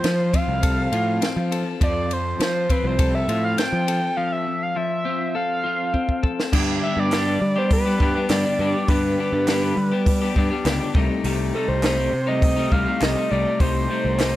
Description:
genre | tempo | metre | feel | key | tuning
indie rock | 102 BPM | 4/4 | straight | G mixolydian | A4 = 440 Hz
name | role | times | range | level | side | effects
overdriven synth lead | melody | 0.0-14.4 s | A4 to G5 | -24 LUFS | right 1 dB | distortion
clean electric guitar | riff | 0.0-14.4 s | G2 to A4 | -26 LUFS | left 6 dB | none
twelve-string electric guitar | riff | 0.0-14.4 s | F3 to G4 | -34 LUFS | right 6 dB | ensemble chorus
fuzz picked electric bass | bass | 0.0-14.4 s | C2 to G3 | -24 LUFS | equal | overdrive
compact cocktail drum kit | drums | 0.0-14.3 s | crash cymbal, hi-hat, kick drum, ride cymbal, snare drum | -23 LUFS | equal | none
group handclap | percussion | 7.1-14.3 s | none | -35 LUFS | right 4 dB | none
room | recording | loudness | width
small room ambience | none | -19 LUFS | side -14 dB against mid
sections
0.0-6.5 A section; 6.5-14.4 B section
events
break 4.2-6.5; drum fill 5.9-6.5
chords
0.0 F; 6.5 G; 10.9 Cm6

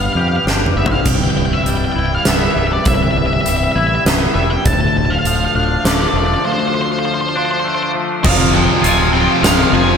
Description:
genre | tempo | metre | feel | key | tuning
post-rock | 100 BPM | 3/4 | straight | C major | A4 = 441 Hz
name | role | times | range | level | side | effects
octave-fuzz lead guitar | melody | 0.0-10.0 s | C5 to A5 | -19 LUFS | left 1 dB | distortion, slapback echo, analog delay
phased analog pad | sustained chords | 0.0-10.0 s | C3 to G5 | -24 LUFS | right 2 dB | phaser, chorus
twangy electric guitar | arpeggios | 0.0-10.0 s | C2 to G4 | -20 LUFS | left 3 dB | analog chorus, analog delay
growling fingered electric bass | bass | 0.0-9.9 s | C1 to F2 | -19 LUFS | equal | overdrive
huge arena drum kit | drums | 0.5-9.6 s | crash cymbal, hi-hat, kick drum, snare drum, toms | -17 LUFS | right 1 dB | none
biting overdriven guitar | riff | 8.2-10.0 s | F2 to F3 | -17 LUFS | right 9 dB | spring reverb
cranked stack guitar | riff | 8.2-10.0 s | F2 to F3 | -16 LUFS | left 8 dB | overdrive, slapback echo
room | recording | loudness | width
moderate concert hall reverb, RT60 2.5 s | big arena sound | -12 LUFS | side -7 dB against mid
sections
0.0-8.2 A section; 8.2-10.0 B section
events
drum fill 0.5-1.1; break 6.5-8.2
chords
0.0 G7; 1.1 Cmaj7; 4.7 Dm7; 8.2 Fm

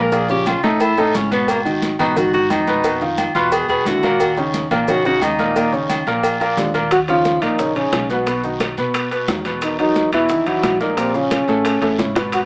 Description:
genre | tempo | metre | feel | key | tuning
Afro-Cuban jazz | 177 BPM | 4/4 | straight | Eb minor | A4 = 440 Hz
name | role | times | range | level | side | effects
warm tenor saxophone | second line | 0.0-12.4 s | Cb3 to Bb4 | -20 LUFS | equal | none
warm concert grand piano | accompaniment | 0.0-12.4 s | A2 to B4 | -20 LUFS | equal | none
upright bass | bass | 0.0-12.5 s | Ab1 to B2 | -29 LUFS | equal | none
agogo bells and timbales | percussion | 0.1-12.5 s | none | -25 LUFS | equal | none
congas | percussion | 0.1-12.5 s | none | -28 LUFS | equal | none
cowbell and bongos | percussion | 0.1-12.5 s | none | -24 LUFS | equal | none
guiro | percussion | 0.1-12.5 s | none | -33 LUFS | equal | none
maracas | percussion | 0.1-12.5 s | none | -39 LUFS | right 1 dB | none
mellow trombone | melody | 6.9-12.4 s | Cb4 to Gb4 | -18 LUFS | equal | none
room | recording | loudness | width
moderate studio reverb, RT60 0.5 s | small speaker sound | -15 LUFS | side -34 dB against mid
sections
0.0-6.9 A section; 6.9-12.5 B section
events
tenor saxophone solo 0.0-6.9; drum fill 11.6-12.3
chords
0.1 Bbm; 0.8 Aadd9; 1.5 Abm7; 2.8 Badd11; 3.5 Esus2; 4.2 Eb5; 6.2 Bb; 6.9 Eb5; 8.3 B; 9.6 Esus2; 11.0 Bbm; 11.6 Aadd9

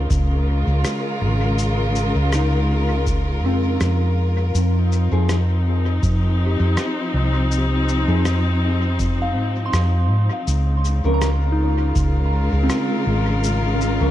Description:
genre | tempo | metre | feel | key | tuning
ambient dub | 81 BPM | 4/4 | swing 54% on 16ths | unclear | A4 = 444 Hz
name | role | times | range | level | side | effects
rich chamber string section | sustained chords | 0.0-14.1 s | Db3 to Bb4 | -23 LUFS | left 2 dB | none
hollow-body short-scale fingered electric bass | bass | 0.0-14.1 s | Ab1 to Ab2 | -19 LUFS | equal | none
electronic cabasa and rim click | drums | 0.1-14.0 s | none | -31 LUFS | left 1 dB | studio reverb, dub echo
electronic kick drum | drums | 0.1-12.1 s | none | -25 LUFS | equal | studio reverb
soft synth bell | arpeggios | 2.3-14.1 s | C4 to C6 | -28 LUFS | equal | chorus, tape echo
mellow electric guitar | stabs | 5.1-14.1 s | F3 to Bb4 | -29 LUFS | left 1 dB | spring reverb, dub echo
room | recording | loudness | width
little or no reverb | dark, warm production | -17 LUFS | side -13 dB against mid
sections
0.0-14.1 A section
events
none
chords
0.0 Db6; 4.5 Fm7; 10.5 Db6

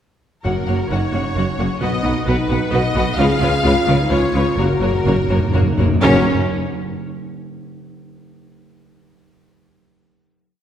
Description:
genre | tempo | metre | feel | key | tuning
cinematic, heroic adventure film score | 122-132 BPM | 3/4 | straight | F# major | A4 = 440 Hz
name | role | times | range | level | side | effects
clear symphonic violin section | melody | 0.4-6.3 s | A#4 to E#5 | -24 LUFS | left 3 dB | none
rich symphonic violin section | second line | 0.4-6.3 s | A#4 to F#5 | -26 LUFS | left 2 dB | none
clear symphonic viola section | accompaniment | 0.4-6.3 s | G#3 to F#4 | -24 LUFS | equal | none
mellow French horn section | sustained chords | 0.4-6.2 s | B3 to G#4 | -23 LUFS | equal | none
clear symphonic double bass section | bass | 0.5-6.3 s | F#1 to C#2 | -24 LUFS | right 2 dB | none
dark tuba | bass | 0.5-6.2 s | F#1 to C#2 | -23 LUFS | right 1 dB | none
rich symphonic cello section | bass | 0.5-6.3 s | F#2 to C#3 | -24 LUFS | right 1 dB | none
timpani | percussion | 0.5-1.1, 3.2-6.3 s | F#2 to C#3 | -23 LUFS | equal | none
room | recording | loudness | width
wet scoring stage reverb, RT60 1.9 s | heard from further back in the room | -15 LUFS | side -9 dB against mid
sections
0.5-6.0 theme; 6.0-7.5 final chord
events
slowing down 2.5-6.0; timpani fill 4.6-6.0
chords
0.5 F#; 1.8 B; 3.2 C#7; 4.6 F#; 6.0 F#5

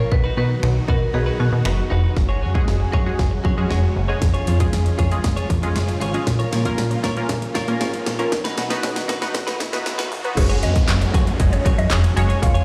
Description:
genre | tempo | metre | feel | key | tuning
dance-pop | 117 BPM | 4/4 | straight | F# major | A4 = 440 Hz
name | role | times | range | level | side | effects
funky polysynth comp | accompaniment | 0.0-12.6 s | G#3 to D#5 | -30 LUFS | equal | chorus, sidechain pumping
supersaw chords | sustained chords | 0.0-12.6 s | G#2 to F#4 | -32 LUFS | equal | sidechain pumping
direct-recorded clean electric guitar | riff | 0.0-12.6 s | D#4 to C#5 | -32 LUFS | equal | subtle chorus
plucky analog bass | bass | 0.0-12.6 s | E#1 to B2 | -23 LUFS | equal | sidechain pumping
marimba with medium hard mallets | melody | 0.1-1.9 s | F#4 to B4 | -31 LUFS | equal | tape echo
pop drum kit | drums | 0.1-12.6 s | crash cymbal, finger snaps, handclaps, hi-hat, kick drum, snare drum | -24 LUFS | equal | none
riser and downlifter | sound effects | 5.6-12.6 s | none | -36 LUFS | equal | none
mallet-like synth pluck | melody | 10.4-12.6 s | G#4 to E#5 | -30 LUFS | equal | chorus, phaser, sidechain pumping
room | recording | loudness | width
digital ambience | played on a big sound system in a bare room, stone room reverb, high-pass filter | -20 LUFS | mono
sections
0.0-2.2 A section; 2.2-10.4 B section; 10.4-12.6 C section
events
kick muted 1.1-2.2; build-up 2.2-10.4; drum fill 2.2-10.4; filter sweep 2.2-10.4; drop 10.4-12.6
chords
0.1 B; 2.2 C#; 6.3 A#m; 8.3 B; 10.4 F#sus2

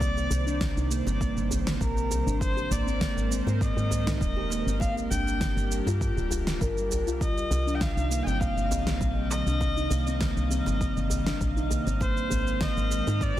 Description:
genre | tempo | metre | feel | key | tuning
organic downtempo | 100 BPM | 4/4 | straight | C minor | A4 = 435 Hz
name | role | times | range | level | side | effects
clear kamancheh | melody | 0.0-13.4 s | Bb4 to Ab5 | -34 LUFS | left 1 dB | digital delay, shimmer reverb
airy breathy pad | sustained chords | 0.0-13.4 s | C3 to Eb5 | -36 LUFS | equal | chorus, sidechain pumping, shimmer reverb
steel tongue drum | arpeggios | 0.0-13.4 s | Bb3 to Bb4 | -32 LUFS | equal | tape echo, shimmer reverb
woody FM bass | bass | 0.0-13.4 s | D1 to Ab2 | -29 LUFS | equal | tube saturation
electronic kick drum | drums | 0.0-13.3 s | none | -30 LUFS | equal | none
electronic shaker and snare drum | drums | 0.0-13.4 s | none | -34 LUFS | right 1 dB | none
djembe | percussion | 0.0-13.4 s | none | -36 LUFS | equal | none
drifting glass-harmonics texture | texture | 7.7-13.4 s | F5 | -41 LUFS | right 2 dB | chorus, built-in reverb, shimmer reverb
room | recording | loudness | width
light reverb, digital ambience | dense, heavily limited modern master | -24 LUFS | side -13 dB against mid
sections
0.0-13.4 A section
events
none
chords
0.0 Cm9; 2.4 Abmaj9; 4.8 Gm7; 7.2 Cm9; 12.0 Abadd9

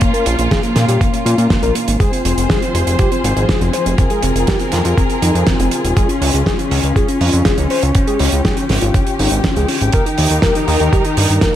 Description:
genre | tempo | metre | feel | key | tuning
italo disco | 121 BPM | 4/4 | straight | unclear | A4 = 438 Hz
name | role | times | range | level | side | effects
soft octave-layered synth lead | melody | 0.0-11.5 s | Bb3 to C5 | -19 LUFS | left 2 dB | chorus, cassette tape, ping-pong delay
dark studio string section | sustained chords | 0.0-11.6 s | Eb3 to C5 | -20 LUFS | equal | none
damped 70s drum kit | drums | 0.0-11.5 s | hi-hat, snare drum | -20 LUFS | right 2 dB | studio reverb, gated reverb
electronic kick drum | drums | 0.0-11.5 s | none | -17 LUFS | equal | overdrive, studio reverb
fat analog bass | bass | 0.3-11.4 s | Eb1 to Bb2 | -16 LUFS | equal | tube saturation
room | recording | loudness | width
light reverb, small room ambience | none | -12 LUFS | side -11 dB against mid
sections
0.0-11.6 A section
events
none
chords
0.0 Bbm; 2.0 Fm; 6.0 Db; 9.9 Eb

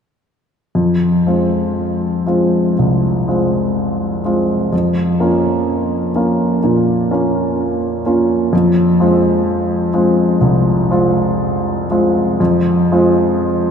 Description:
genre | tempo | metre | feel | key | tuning
classical, romantic character piece for solo piano | 62 BPM | 4/4 | uneven beats, rubato | F minor | A4 = 442 Hz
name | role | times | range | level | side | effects
clear grand piano | solo | 0.8-13.7 s | C2 to F4 | -13 LUFS | equal | none
room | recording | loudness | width
wet cathedral reverb, RT60 5.4 s | in a vast, echoing space | -13 LUFS | side -7 dB against mid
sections
0.8-13.7 A section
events
none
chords
0.8 Fm; 4.7 Bbm/F; 8.5 Fm

